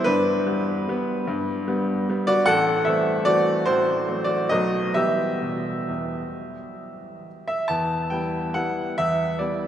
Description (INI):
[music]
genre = classical, piano waltz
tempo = 126-161 BPM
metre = 3/4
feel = rubato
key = E minor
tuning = A4 = 438 Hz
[part]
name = bright baby grand piano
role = solo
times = 0.0-9.7 s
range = A1 to A5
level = -21 LUFS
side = equal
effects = none
[sound]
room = wet cathedral reverb, RT60 5.8 s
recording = recorded in a church or concert hall, nothing above 10.9 kHz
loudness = -21 LUFS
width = side -10 dB against mid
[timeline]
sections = 0.0-7.7 A section; 7.7-9.7 B section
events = none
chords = 0.1 G; 2.5 Am; 3.7 F#dim/A; 4.5 B7; 5.0 Em